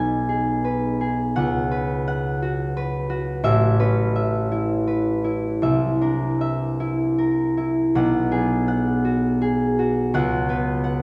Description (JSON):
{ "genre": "classical, solo harp piece", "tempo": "51-59 BPM (dotted quarters)", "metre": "6/8", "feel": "rubato", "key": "B mixolydian", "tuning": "A4 = 439 Hz", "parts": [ { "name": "concert harp", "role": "solo", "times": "0.0-11.0 s", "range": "A1 to G#5", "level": "-22 LUFS", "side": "equal", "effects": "none" } ], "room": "wet recital hall reverb, RT60 1.3 s", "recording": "heard from further back in the room", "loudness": "-22 LUFS", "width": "mono", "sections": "0.0-11.0 A section", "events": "none", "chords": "0.0 B6; 1.4 C#9sus4; 3.4 Aadd9; 5.6 C9; 7.9 B5; 10.1 C#7sus4", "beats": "0.29 | 1.36 2.42 | 3.45 4.52 | 5.62 6.80 | 7.95 9.04 | 10.13" }